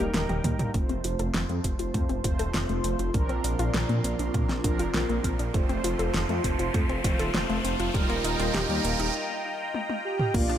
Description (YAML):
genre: synthwave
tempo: 100 BPM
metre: 4/4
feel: straight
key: unclear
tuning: A4 = 440 Hz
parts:
  - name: phased analog pad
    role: sustained chords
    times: 0.0-10.6 s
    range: D3 to C6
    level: -34 LUFS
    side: left 1 dB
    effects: phaser, chorus, sidechain pumping
  - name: analog pluck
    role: arpeggios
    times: 0.0-10.6 s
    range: G3 to C5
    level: -34 LUFS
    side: left 3 dB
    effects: chorus, cassette tape, ping-pong delay
  - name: mellow synth brass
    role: stabs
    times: 0.0-10.6 s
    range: F3 to D5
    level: -33 LUFS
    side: right 4 dB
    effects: chorus, ping-pong delay
  - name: wide detuned saw bass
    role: bass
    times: 0.0-10.6 s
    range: Eb1 to Bb2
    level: -30 LUFS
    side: equal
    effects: chorus, sidechain pumping
  - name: pop drum kit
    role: drums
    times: 0.1-10.6 s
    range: crash cymbal, hi-hat, snare drum, toms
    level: -31 LUFS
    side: equal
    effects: none
  - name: electronic kick drum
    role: drums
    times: 0.4-10.5 s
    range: none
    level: -28 LUFS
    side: equal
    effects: none
  - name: riser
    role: sound effects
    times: 3.2-9.1 s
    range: none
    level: -36 LUFS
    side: right 2 dB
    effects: none
  - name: expressive portamento lead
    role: melody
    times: 10.0-10.6 s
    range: F4 to G4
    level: -28 LUFS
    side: right 4 dB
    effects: lush chorus, vintage 12-bit sampler grit
room: light reverb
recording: none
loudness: -24 LUFS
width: side -10 dB against mid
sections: 0.7-10.3 A section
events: drum fill 0.0-0.7, 9.7-10.3; filter sweep on analog synth pad 0.7-10.3; filter sweep on synth arpeggio sound 0.7-10.3; riser 3.2-9.1; break 9.1-10.3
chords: 0.0 Eb; 0.7 F; 3.1 Bbadd9; 5.5 F; 7.9 Ebadd9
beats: 0.14 | 0.74 1.34 1.94 2.54 | 3.14 3.74 4.34 4.94 | 5.54 6.14 6.74 7.34 | 7.94 8.54 9.14 9.74 | 10.34